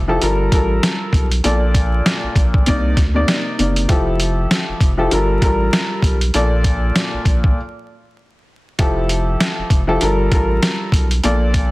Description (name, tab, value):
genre	hip hop, boom-bap hip-hop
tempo	98 BPM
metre	4/4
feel	swing 58% on 16ths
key	unclear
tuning	A4 = 436 Hz
part	saturated sub bass	bass	0.0-11.7 s	F1 to D2	-19 LUFS	equal	none
part	dark upright piano	accompaniment	0.1-11.7 s	Bb2 to D5	-19 LUFS	left 1 dB	high-pass filter, low-pass filter
part	boom bap sampler-style drum kit	drums	0.2-11.7 s	hi-hat, kick drum, snare drum	-17 LUFS	equal	none
room	light reverb, digital ambience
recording	dense, heavily limited modern master, vinyl crackle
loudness	-14 LUFS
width	side -20 dB against mid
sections	0.0-11.7 A section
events	break 7.6-8.8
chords	0.2 Gm9; 1.4 Bbmaj7; 2.7 Cm9; 3.9 Fmaj9; 5.1 Gm9; 6.3 Bbmaj7; 7.6 N.C.; 8.8 Fmaj9; 10.0 Gm9